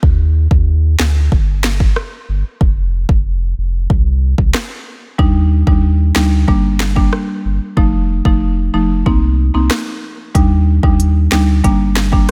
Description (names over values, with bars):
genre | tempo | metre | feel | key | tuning
dancehall | 93 BPM | 4/4 | straight | unclear | A4 = 440 Hz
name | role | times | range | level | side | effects
saturated sub bass | bass | 0.0-12.2 s | F1 to Eb2 | -16 LUFS | equal | none
afro-pop drum kit | drums | 0.0-12.3 s | finger snaps, hi-hat, kick drum, rim click, snare drum | -17 LUFS | equal | none
buzzing marimba with medium mallets | accompaniment | 5.2-12.3 s | F3 to Eb4 | -19 LUFS | equal | none
room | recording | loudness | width
little or no reverb | none | -14 LUFS | mono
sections
0.0-12.3 A section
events
none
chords
0.0 N.C.; 5.2 Ebmaj7; 6.5 Gm; 7.8 F7; 9.1 Cm7; 10.4 Ebmaj7; 11.6 Gm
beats
| 0.03 0.67 1.32 1.96 | 2.61 3.25 3.90 4.54 | 5.19 5.83 6.48 7.12 | 7.77 8.41 9.06 9.71 | 10.35 11.00 11.64 12.29